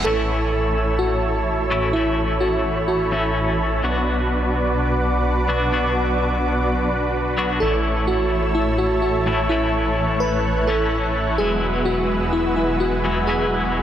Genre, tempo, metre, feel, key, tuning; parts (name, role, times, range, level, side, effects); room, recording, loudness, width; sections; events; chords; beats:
EDM; 127 BPM; 4/4; straight; A major; A4 = 440 Hz
bell-like FM electric piano; melody; 0.0-3.6, 7.6-13.8 s; E4 to B4; -24 LUFS; right 1 dB; chorus, digital delay
clean electric guitar; accompaniment; 0.0-13.8 s; A2 to F#4; -25 LUFS; left 3 dB; harmonic tremolo, digital delay
lush unison pad; sustained chords; 0.0-13.8 s; B4 to F#6; -27 LUFS; equal; chorus
dense compressed supersaw; riff; 0.0-13.8 s; G#3 to C#5; -24 LUFS; right 1 dB; low-pass filter, digital delay
wide detuned saw bass; bass; 0.0-13.8 s; E1 to B1; -24 LUFS; equal; chorus
moderate lush hall reverb, RT60 2.4 s; -18 LUFS; side -10 dB against mid
0.0-13.8 A section
0.1 A; 3.8 Bm; 7.6 A; 11.4 Eadd9
| 0.06 0.53 1.00 1.48 | 1.95 2.42 2.89 3.37 | 3.84 4.31 4.78 5.25 | 5.73 6.20 6.67 7.14 | 7.62 8.09 8.56 9.03 | 9.51 9.98 10.45 10.92 | 11.40 11.87 12.34 12.81 | 13.29 13.76